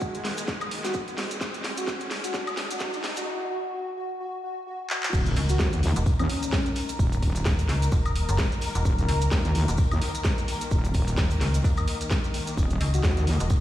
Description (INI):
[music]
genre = bass house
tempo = 129 BPM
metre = 4/4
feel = swing 57% on 16ths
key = Eb minor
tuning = A4 = 440 Hz
[part]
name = rich symphonic string section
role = sustained chords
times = 0.0-13.6 s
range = Eb2 to Eb5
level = -34 LUFS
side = left 2 dB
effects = sidechain pumping, low-pass filter
[part]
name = electronic kick drum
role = drums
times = 0.0-13.6 s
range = none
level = -25 LUFS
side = equal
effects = none
[part]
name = maracas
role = percussion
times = 0.0-13.6 s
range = none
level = -41 LUFS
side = right 3 dB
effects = none
[part]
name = riser and impact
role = sound effects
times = 0.0-7.0 s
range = none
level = -36 LUFS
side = equal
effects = none
[part]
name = garage drum kit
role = drums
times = 0.1-13.5 s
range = crash cymbal, handclaps, hi-hat, snare drum, woodblock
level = -32 LUFS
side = equal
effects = none
[part]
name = airy dreamy lead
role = melody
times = 0.8-6.7, 12.9-13.0 s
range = Db4 to Gb4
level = -33 LUFS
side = left 1 dB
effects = chorus, ping-pong delay
[part]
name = wobble bass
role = bass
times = 5.1-13.4 s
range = Eb1 to Eb2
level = -25 LUFS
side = equal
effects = chorus, tube saturation, sidechain pumping
[part]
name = compact cocktail drum kit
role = drums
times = 5.1-13.6 s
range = hi-hat, snare drum, tambourine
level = -42 LUFS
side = equal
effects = sidechain pumping on hats, high-pass filter on hats, high-pass filter on snare, sidechain pumping on perc, high-pass filter on perc, high-pass filter on room
[part]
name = metallic FM bass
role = bass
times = 5.4-13.6 s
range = Eb1 to Eb2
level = -24 LUFS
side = equal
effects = overdrive, sidechain pumping
[sound]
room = light reverb, studio ambience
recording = played on a big sound system in a bare room, stone room reverb, high-pass filter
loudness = -23 LUFS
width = side -13 dB against mid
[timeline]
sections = 0.0-5.1 A section; 5.1-13.6 B section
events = build-up 0.0-5.1; drum fill 0.0-3.3, 4.9; riser 0.0-3.3; drop 5.1-13.6; impact 5.1-7.0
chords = 0.0 Eb5